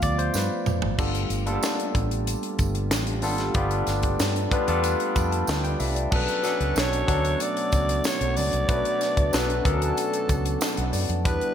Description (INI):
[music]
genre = polished 1980s jazz-funk pop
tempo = 94 BPM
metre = 4/4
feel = straight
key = B minor from 6.1 s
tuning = A4 = 440 Hz
[part]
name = barky tine electric piano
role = accompaniment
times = 0.0-11.5 s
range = F#3 to B5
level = -27 LUFS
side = left 1 dB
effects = overdrive, lush chorus
[part]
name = mellow brass ensemble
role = sustained chords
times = 0.0-11.5 s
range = B2 to G4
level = -36 LUFS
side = right 1 dB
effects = none
[part]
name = vintage muted fingered electric bass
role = bass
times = 0.0-11.4 s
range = G1 to G2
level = -27 LUFS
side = equal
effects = none
[part]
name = tight funk drum kit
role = drums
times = 0.0-11.5 s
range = crash cymbal, hi-hat, kick drum, snare drum, toms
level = -27 LUFS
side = equal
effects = gated reverb
[part]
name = tambourine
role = percussion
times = 0.0-11.4 s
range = none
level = -38 LUFS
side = right 8 dB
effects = none
[part]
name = breathy alto saxophone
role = melody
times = 6.1-11.5 s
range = A4 to D5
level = -27 LUFS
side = equal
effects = none
[sound]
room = moderate plate reverb, RT60 1.9 s, small room reverb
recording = bright 1980s-style digital production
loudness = -22 LUFS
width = side -9 dB against mid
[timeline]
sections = 1.0-6.1 A section; 6.1-11.5 B section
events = drum fill 0.3-1.0; tine electric piano fill 4.8-6.1, 10.3-11.3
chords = 0.0 G9; 6.1 Bm9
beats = 0.35 | 0.99 1.63 2.27 2.91 | 3.56 4.20 4.84 5.48 | 6.12 6.76 7.40 8.05 | 8.69 9.33 9.97 10.61 | 11.25